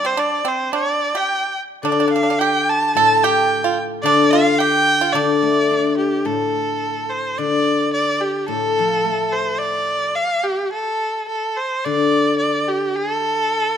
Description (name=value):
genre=chinese traditional, Chinese chamber ensemble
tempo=108 BPM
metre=2/4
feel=rubato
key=D yu mode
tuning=A4 = 440 Hz
part: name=clear erhu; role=melody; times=0.0-13.8 s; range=G4 to A5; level=-18 LUFS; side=right 1 dB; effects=none
part: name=pipa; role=second line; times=0.0-5.9 s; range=C4 to A4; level=-22 LUFS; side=right 6 dB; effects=none
part: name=guzheng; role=accompaniment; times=0.0-13.5 s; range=A2 to D4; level=-20 LUFS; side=left 4 dB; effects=none
room=moderate recital hall reverb, RT60 1.7 s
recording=close, detailed microphones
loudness=-16 LUFS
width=side -8 dB against mid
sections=0.0-6.3 A section; 6.3-13.8 B section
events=none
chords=none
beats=0.19 | 0.73 1.29 | 1.85 2.41 | 2.96 3.51 | 4.05 4.60 | 5.14 5.70 | 6.27 6.83 | 7.40 7.96 | 8.51 9.06 | 9.61 10.17 | 10.74 11.31 | 11.86 12.41 | 12.96 13.52